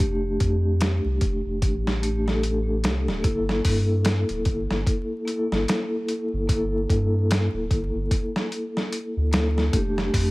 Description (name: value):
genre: trip hop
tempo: 74 BPM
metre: 4/4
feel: swing 58% on 16ths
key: G dorian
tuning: A4 = 440 Hz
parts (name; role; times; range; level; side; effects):
- vibraphone with soft mallets; accompaniment; 0.0-10.3 s; A3 to A4; -26 LUFS; equal; tremolo
- soft dub sub bass; bass; 0.0-10.3 s; D1 to G2; -25 LUFS; equal; none
- dusty soul sampler-style drum kit; drums; 0.0-10.3 s; hi-hat, kick drum, snare drum; -25 LUFS; equal; overdrive
room: little or no reverb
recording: vinyl crackle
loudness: -21 LUFS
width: side -21 dB against mid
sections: 0.0-10.3 A section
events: none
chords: 0.0 F69; 3.2 Gm69; 9.7 F69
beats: | 0.00 0.81 1.62 2.43 | 3.24 4.05 4.86 5.67 | 6.49 7.30 8.11 8.92 | 9.73